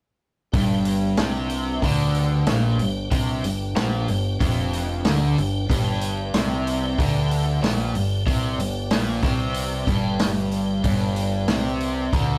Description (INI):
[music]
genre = blues rock power trio and southern rock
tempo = 93 BPM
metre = 4/4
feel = straight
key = G mixolydian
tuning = A4 = 437 Hz
[part]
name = tonewheel organ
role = sustained chords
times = 0.5-12.4 s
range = D4 to G5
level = -35 LUFS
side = equal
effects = slow rotary speaker, chorus vibrato
[part]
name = growling picked electric bass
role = bass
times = 0.5-12.4 s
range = F1 to D2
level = -29 LUFS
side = equal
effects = overdrive
[part]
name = vintage drum kit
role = drums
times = 0.5-12.3 s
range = hi-hat, kick drum, snare drum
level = -27 LUFS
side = equal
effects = none
[part]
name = crunchy overdriven guitar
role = riff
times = 0.6-12.4 s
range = F2 to D3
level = -26 LUFS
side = equal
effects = none
[sound]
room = moderate small room reverb, RT60 0.5 s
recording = rough rehearsal-room recording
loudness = -23 LUFS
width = mono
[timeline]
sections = 0.5-12.4 A section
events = none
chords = 0.5 G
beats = | 0.54 1.18 1.83 2.47 | 3.12 3.76 4.41 5.05 | 5.70 6.34 6.99 7.63 | 8.27 8.92 9.56 10.20 | 10.85 11.49 12.13